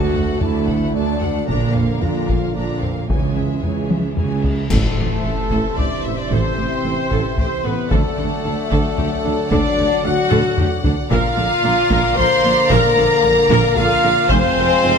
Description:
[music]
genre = cinematic, epic orchestral film score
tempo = 112 BPM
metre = 3/4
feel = straight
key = unclear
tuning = A4 = 439 Hz
[part]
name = warm symphonic violin section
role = melody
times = 0.0-15.0 s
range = A4 to C6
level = -26 LUFS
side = left 2 dB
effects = none
[part]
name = warm symphonic violin section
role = second line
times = 0.0-15.0 s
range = G#4 to Bb5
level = -27 LUFS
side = left 5 dB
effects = none
[part]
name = clear symphonic viola section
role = accompaniment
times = 0.0-14.9 s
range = E3 to D5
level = -27 LUFS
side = right 1 dB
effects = none
[part]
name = clear French horn section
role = sustained chords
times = 0.0-15.0 s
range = G#3 to C5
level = -21 LUFS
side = left 5 dB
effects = none
[part]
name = warm trombone section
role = sustained chords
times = 0.0-15.0 s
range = C3 to Bb3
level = -27 LUFS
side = right 5 dB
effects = none
[part]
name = mellow tuba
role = bass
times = 0.0-14.9 s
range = F1 to D2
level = -25 LUFS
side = right 5 dB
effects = none
[part]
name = rich symphonic double bass section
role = bass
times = 0.0-14.9 s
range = F1 to D2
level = -26 LUFS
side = right 4 dB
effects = none
[part]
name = warm studio cello section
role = bass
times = 0.0-14.9 s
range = D2 to D3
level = -25 LUFS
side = right 3 dB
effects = none
[part]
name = taiko ensemble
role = drums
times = 0.1-14.8 s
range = none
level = -23 LUFS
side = left 1 dB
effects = none
[part]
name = cymbal swell, clash cymbals and concert bass drum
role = percussion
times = 1.5-5.7, 14.3-15.0 s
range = none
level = -27 LUFS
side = left 1 dB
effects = none
[part]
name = dark trumpet section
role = stabs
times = 4.7-15.0 s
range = A4 to C6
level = -23 LUFS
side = right 2 dB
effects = none
[part]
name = timpani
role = percussion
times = 4.7-5.5 s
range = A2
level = -26 LUFS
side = left 2 dB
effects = none
[sound]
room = moderate concert hall reverb, RT60 1.9 s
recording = none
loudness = -15 LUFS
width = side -6 dB against mid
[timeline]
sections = 0.0-4.7 A section; 4.7-15.0 B section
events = drum fill 3.9-4.7, 10.3-11.1; band accent 4.7-5.2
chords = 0.0 D; 1.5 Bb; 3.1 C#m; 4.7 Am; 7.9 D; 11.1 Bb; 14.3 Fm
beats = 0.42 0.95 | 1.49 2.03 2.56 | 3.10 3.63 4.17 | 4.71 5.24 5.78 | 6.31 6.85 7.38 | 7.91 8.45 8.98 | 9.52 10.05 10.58 | 11.11 11.64 12.18 | 12.71 13.24 13.77 | 14.30 14.84

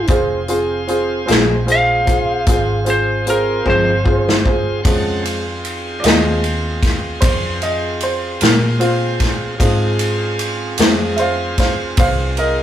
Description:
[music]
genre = slow blues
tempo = 50 BPM (dotted quarters)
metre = 12/8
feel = straight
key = F minor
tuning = A4 = 443 Hz
[part]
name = lightly driven lead guitar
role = melody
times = 0.0-4.4 s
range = Bb4 to F5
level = -18 LUFS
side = equal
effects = none
[part]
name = bright tonewheel organ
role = sustained chords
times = 0.0-12.6 s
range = Db3 to A5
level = -25 LUFS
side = equal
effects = overdrive, slow rotary speaker
[part]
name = vintage muted fingered electric bass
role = bass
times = 0.0-12.6 s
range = F1 to Bb2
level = -22 LUFS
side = equal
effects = none
[part]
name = bright upright piano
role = accompaniment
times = 0.1-12.6 s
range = F3 to F5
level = -20 LUFS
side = right 1 dB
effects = none
[part]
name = natural country drum kit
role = drums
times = 0.1-12.6 s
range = hi-hat, kick drum, ride cymbal, snare drum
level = -17 LUFS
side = equal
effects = none
[part]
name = electric guitar through a small old amp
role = accompaniment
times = 1.3-3.9 s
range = F2 to C4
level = -20 LUFS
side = left 2 dB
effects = harmonic tremolo
[sound]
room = moderate studio reverb, RT60 0.6 s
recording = rough rehearsal-room recording, warm saturation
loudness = -14 LUFS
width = side -11 dB against mid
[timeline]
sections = 0.0-4.9 A section; 4.9-12.6 B section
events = drum fill 3.7-4.9; upright piano solo 4.9-12.6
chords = 0.0 Fm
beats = | 0.10 1.29 2.48 3.66 | 4.85 6.04 7.23 8.42 | 9.60 10.79 11.98

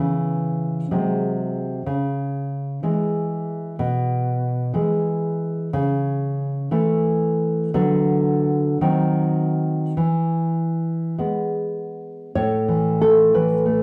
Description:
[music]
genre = romantic piece for solo classical guitar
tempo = 49-64 BPM (dotted quarters)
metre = 6/8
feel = rubato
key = A major from 3.8 s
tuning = A4 = 440 Hz
[part]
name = nylon-string guitar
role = solo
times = 0.0-13.8 s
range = A2 to C#5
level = -22 LUFS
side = equal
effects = slapback echo
[sound]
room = wet studio reverb, RT60 0.7 s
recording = heard from further back in the room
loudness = -22 LUFS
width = mono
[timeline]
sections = 0.0-12.3 A section; 12.3-13.8 B section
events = none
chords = 0.0 C#m7; 0.9 G#7/B#; 1.8 C#m; 3.8 E/B; 5.7 A/C#; 7.7 Bm/D; 8.8 D#m6; 10.0 E; 12.3 A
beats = 0.90 | 1.85 2.81 | 3.78 4.74 | 5.73 6.71 | 7.75 8.82 | 9.97 11.19 | 12.35 13.33

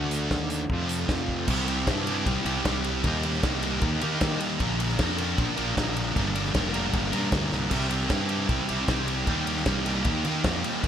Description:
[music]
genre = indie rock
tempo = 154 BPM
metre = 4/4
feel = straight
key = unclear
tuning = A4 = 439 Hz
[part]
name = sludgy distorted guitar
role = riff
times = 0.0-10.9 s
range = F2 to Bb4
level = -26 LUFS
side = right 1 dB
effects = overdrive
[part]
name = fuzz fingered electric bass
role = bass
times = 0.0-10.9 s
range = F1 to Eb3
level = -31 LUFS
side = equal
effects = overdrive
[part]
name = loose indie drum kit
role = drums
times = 0.1-10.9 s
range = crash cymbal, hi-hat, kick drum, ride cymbal, snare drum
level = -29 LUFS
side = left 1 dB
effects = none
[sound]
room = light reverb, small room ambience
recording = none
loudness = -24 LUFS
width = side -9 dB against mid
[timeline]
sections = 0.0-1.5 A section; 1.5-10.9 B section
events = drum fill 1.3, 7.5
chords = 0.0 D; 0.7 F; 1.5 C; 3.0 Eb; 4.6 Bb; 6.2 Gm; 7.7 C; 9.3 Eb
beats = 0.32 0.71 1.10 | 1.49 1.88 2.27 2.66 | 3.05 3.44 3.83 4.22 | 4.61 4.99 5.38 5.77 | 6.16 6.55 6.94 7.33 | 7.72 8.11 8.50 8.89 | 9.28 9.67 10.06 10.45 | 10.84

